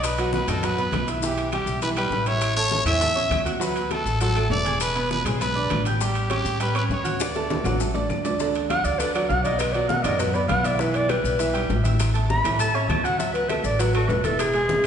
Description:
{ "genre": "latin, salsa", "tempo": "200 BPM", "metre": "4/4", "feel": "straight", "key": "D major", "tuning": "A4 = 437 Hz", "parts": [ { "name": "growling trumpet", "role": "melody", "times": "0.0-7.8 s", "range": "G4 to E5", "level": "-25 LUFS", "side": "equal", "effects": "none" }, { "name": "bright concert grand piano", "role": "accompaniment", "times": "0.0-14.9 s", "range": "D3 to G#6", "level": "-27 LUFS", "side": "right 3 dB", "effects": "none" }, { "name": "upright bass", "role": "bass", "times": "0.0-14.9 s", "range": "E1 to A2", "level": "-26 LUFS", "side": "equal", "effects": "none" }, { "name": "bongos", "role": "percussion", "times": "0.0-14.8 s", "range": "none", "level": "-35 LUFS", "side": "left 5 dB", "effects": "none" }, { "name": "claves", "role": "percussion", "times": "0.0-14.9 s", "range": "none", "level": "-41 LUFS", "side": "left 4 dB", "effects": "none" }, { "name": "congas", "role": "percussion", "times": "0.0-14.8 s", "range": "none", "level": "-33 LUFS", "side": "equal", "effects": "none" }, { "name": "maracas", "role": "percussion", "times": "0.0-14.8 s", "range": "none", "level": "-37 LUFS", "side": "left 6 dB", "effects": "none" }, { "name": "timbales", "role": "percussion", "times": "0.0-14.9 s", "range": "none", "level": "-34 LUFS", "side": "right 3 dB", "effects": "none" }, { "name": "clear clarinet", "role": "melody", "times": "8.7-14.9 s", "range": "F#4 to B5", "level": "-23 LUFS", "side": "equal", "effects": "none" } ], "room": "wet recital hall reverb, RT60 1.6 s", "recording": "recorded in a church or concert hall, nothing above 10.4 kHz", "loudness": "-20 LUFS", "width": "side -8 dB against mid", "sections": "0.0-8.4 A section; 8.4-14.9 B section", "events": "drum fill 7.2-8.4; clarinet solo 8.4-14.9", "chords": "0.0 B; 1.2 Em/B; 2.4 A; 3.6 D6; 4.8 E7; 6.0 A7; 7.2 D; 9.6 B; 10.8 Em/B; 12.0 A; 13.2 D" }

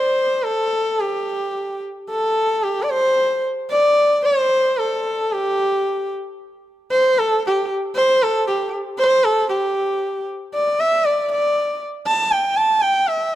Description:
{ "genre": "indian classical", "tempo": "114 BPM", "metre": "4/4", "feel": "uneven beats", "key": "G raga durga", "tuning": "A4 = 439 Hz", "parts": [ { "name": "warm sarangi", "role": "solo", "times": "0.0-13.4 s", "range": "G4 to A5", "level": "-17 LUFS", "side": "equal", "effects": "none" } ], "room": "light reverb", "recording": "close, detailed microphones", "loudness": "-17 LUFS", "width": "side -13 dB against mid", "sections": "0.0-1.0 A section; 1.0-9.5 B section; 9.5-13.4 C section", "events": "speeding up 0.0-13.4", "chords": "none" }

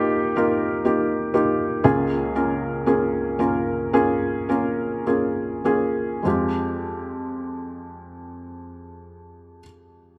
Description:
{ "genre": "pop", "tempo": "50-63 BPM", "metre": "4/4", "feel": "straight", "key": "F minor", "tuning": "A4 = 440 Hz", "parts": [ { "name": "felt-muted upright piano", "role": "accompaniment", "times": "0.0-10.2 s", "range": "Db2 to Bb4", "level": "-23 LUFS", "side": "equal", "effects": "none" } ], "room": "moderate plate reverb, RT60 2.6 s", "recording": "none", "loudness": "-23 LUFS", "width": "mono", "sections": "0.0-6.2 A section; 6.2-10.2 B section", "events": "slowing down 0.0-6.2", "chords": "0.0 Ebadd9; 1.8 Bbm7/Db; 6.2 Fmadd9" }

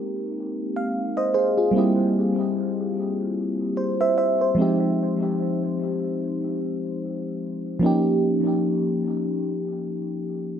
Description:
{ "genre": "R&B", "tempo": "74 BPM", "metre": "4/4", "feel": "swing 58% on 16ths", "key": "unclear", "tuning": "A4 = 440 Hz", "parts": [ { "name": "mellow FM electric piano", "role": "solo", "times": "0.0-10.6 s", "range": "F3 to F5", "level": "-21 LUFS", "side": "equal", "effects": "chorus, phaser, tape echo" } ], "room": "moderate echo chamber reverb, RT60 1.7 s", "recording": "echo-heavy mix", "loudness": "-21 LUFS", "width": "side -8 dB against mid", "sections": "0.0-10.6 A section", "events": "none", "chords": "0.0 Abmaj7; 1.7 C7; 4.6 Fm7; 7.8 Eb7" }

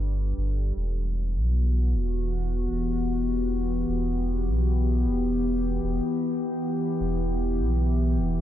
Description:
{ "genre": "ambient dub", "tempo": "77 BPM", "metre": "4/4", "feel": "straight", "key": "unclear", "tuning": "A4 = 438 Hz", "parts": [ { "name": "warbly tape-like pad", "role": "sustained chords", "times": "0.0-8.4 s", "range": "E3 to B4", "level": "-27 LUFS", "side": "left 1 dB", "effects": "chorus, built-in reverb" }, { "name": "warm sub bass", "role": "bass", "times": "0.0-8.4 s", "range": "E1 to B1", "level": "-25 LUFS", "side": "equal", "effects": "none" } ], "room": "moderate lush hall reverb, RT60 2.7 s", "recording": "dreamy mix soaked in reverb", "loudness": "-24 LUFS", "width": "side -12 dB against mid", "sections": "0.0-8.4 A section", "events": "none", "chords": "0.0 G/E" }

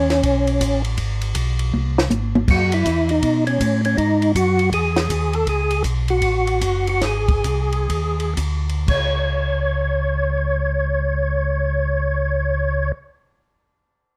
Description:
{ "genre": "soul jazz organ trio", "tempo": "112-161 BPM", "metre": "4/4", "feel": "swing 64% on 8ths", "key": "unclear", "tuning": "A4 = 440 Hz", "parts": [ { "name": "percussive tonewheel organ", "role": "melody", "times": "0.0-12.9 s", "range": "C#4 to C#5", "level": "-23 LUFS", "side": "equal", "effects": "slow rotary speaker, overdrive, chorus vibrato" }, { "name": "mellow tonewheel organ", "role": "bass", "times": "0.0-12.9 s", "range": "F#1 to B2", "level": "-23 LUFS", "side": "equal", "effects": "chorus vibrato, slow rotary speaker" }, { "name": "compact cocktail drum kit", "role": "drums", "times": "0.1-9.0 s", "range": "crash cymbal, hi-hat, kick drum, ride cymbal, snare drum, toms", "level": "-27 LUFS", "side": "equal", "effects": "none" } ], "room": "light reverb", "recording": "close, detailed microphones", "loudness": "-20 LUFS", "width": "mono", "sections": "0.0-2.5 A section; 2.5-8.9 B section; 8.9-13.2 C section", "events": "drum fill 1.7-2.5; slowing down 5.5-8.9", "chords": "0.0 C#sus2; 1.0 G#; 2.5 F#m7; 4.0 G#5; 5.5 F#m; 7.0 G#; 8.9 N.C." }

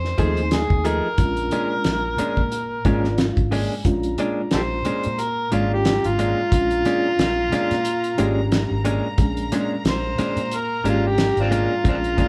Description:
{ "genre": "straight-eighth soul blues", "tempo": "90 BPM", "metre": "4/4", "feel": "swing 56% on 16ths", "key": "Bb mixolydian", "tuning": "A4 = 440 Hz", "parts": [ { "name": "overdriven harmonica", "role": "melody", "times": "0.0-12.3 s", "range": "C4 to C5", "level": "-26 LUFS", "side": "equal", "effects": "none" }, { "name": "vintage muted fingered electric bass", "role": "bass", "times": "0.0-12.1 s", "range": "Ab1 to Bb2", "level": "-28 LUFS", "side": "equal", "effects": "none" }, { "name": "cloth-damped thuddy drum kit", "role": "drums", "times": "0.0-12.3 s", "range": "hi-hat, kick drum, snare drum", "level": "-25 LUFS", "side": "equal", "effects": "none" }, { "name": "mellow reed electric piano", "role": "accompaniment", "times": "0.2-12.3 s", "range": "Ab3 to Ab5", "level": "-29 LUFS", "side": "equal", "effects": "fast tremolo" }, { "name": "direct-recorded clean electric guitar", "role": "stabs", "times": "0.2-12.3 s", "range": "Bb2 to G#4", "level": "-28 LUFS", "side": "equal", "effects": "none" }, { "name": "clear horn section", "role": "sustained chords", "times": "3.8-12.3 s", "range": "Bb4 to Bb5", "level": "-38 LUFS", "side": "equal", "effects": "none" } ], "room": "moderate large studio reverb, RT60 1.2 s", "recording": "band playing live in one room", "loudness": "-21 LUFS", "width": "mono", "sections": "0.0-3.9 A section; 3.9-12.3 B section", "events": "reed electric piano fill 2.5-3.9; harmonica solo 3.9-12.3", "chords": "0.0 F7#9; 1.2 Bb7#9" }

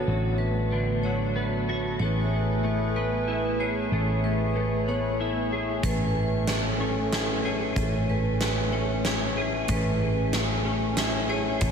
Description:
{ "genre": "post-rock", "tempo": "94 BPM", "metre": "3/4", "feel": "straight", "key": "A major", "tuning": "A4 = 435 Hz", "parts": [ { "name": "pedal harmonium", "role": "sustained chords", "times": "0.0-11.7 s", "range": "E3 to C#5", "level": "-32 LUFS", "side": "left 1 dB", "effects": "stereo widening" }, { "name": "twelve-string electric guitar", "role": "arpeggios", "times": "0.0-11.7 s", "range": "A2 to G#4", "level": "-29 LUFS", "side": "left 1 dB", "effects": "ensemble chorus, analog delay" }, { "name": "vibraphone with hard mallets", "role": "arpeggios", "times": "0.0-11.7 s", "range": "A4 to C#5", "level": "-33 LUFS", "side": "right 2 dB", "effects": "analog delay" }, { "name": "hollow-body short-scale picked electric bass", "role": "bass", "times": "0.0-11.7 s", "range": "A1", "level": "-28 LUFS", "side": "equal", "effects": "none" }, { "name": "big rock drum kit", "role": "drums", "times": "5.8-11.7 s", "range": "hi-hat, kick drum, snare drum", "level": "-29 LUFS", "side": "equal", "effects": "none" } ], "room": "moderate huge ambient reverb, RT60 7.4 s", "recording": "dreamy mix soaked in reverb", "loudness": "-24 LUFS", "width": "side -6 dB against mid", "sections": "0.0-11.7 A section", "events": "none", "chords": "0.0 Bm/A; 2.0 Amaj7" }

